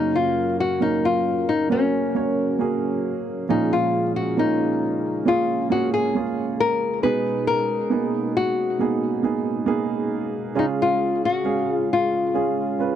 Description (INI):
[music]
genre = pop ballad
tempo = 68 BPM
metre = 4/4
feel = straight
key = F# major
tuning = A4 = 440 Hz
[part]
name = nylon-string guitar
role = melody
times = 0.0-13.0 s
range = C#4 to B4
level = -22 LUFS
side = left 4 dB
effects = none
[part]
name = warm grand piano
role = accompaniment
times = 0.0-13.0 s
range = F#2 to E#5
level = -24 LUFS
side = right 6 dB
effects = none
[part]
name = dark French horn section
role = sustained chords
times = 0.0-13.0 s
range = B2 to E#5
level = -30 LUFS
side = left 4 dB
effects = none
[sound]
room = little or no reverb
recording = dry, close 1970s-style studio recording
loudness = -20 LUFS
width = side -10 dB against mid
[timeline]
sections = 0.0-13.0 A section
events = none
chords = 0.0 F#; 3.5 A#m7; 7.0 G#madd9/B; 10.6 C#